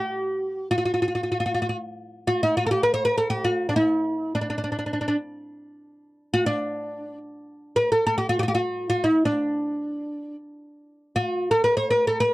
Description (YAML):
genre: Arabic maqam ensemble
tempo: free time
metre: none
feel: none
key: D maqam huzam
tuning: A4 = 440 Hz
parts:
  - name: oud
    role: solo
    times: 0.0-12.3 s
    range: D4 to C5+50c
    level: -22 LUFS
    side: equal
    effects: none
room: light reverb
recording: dry, close 1970s-style studio recording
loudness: -22 LUFS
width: side -18 dB against mid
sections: 0.0-7.3 A section; 7.3-12.3 A section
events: none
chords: none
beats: free time